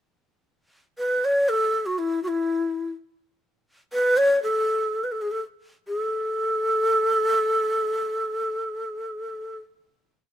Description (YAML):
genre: persian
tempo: 82 BPM (dotted quarters)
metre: 6/8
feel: straight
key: A dastgah mahur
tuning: A4 = 441 Hz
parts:
  - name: breathy low ney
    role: solo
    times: 1.0-9.6 s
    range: E4 to C#5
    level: -22 LUFS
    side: equal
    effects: none
room: light reverb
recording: minimal, uncompressed stereo recording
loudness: -22 LUFS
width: side -12 dB against mid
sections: 0.0-5.9 A section; 5.9-8.8 final note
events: none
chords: none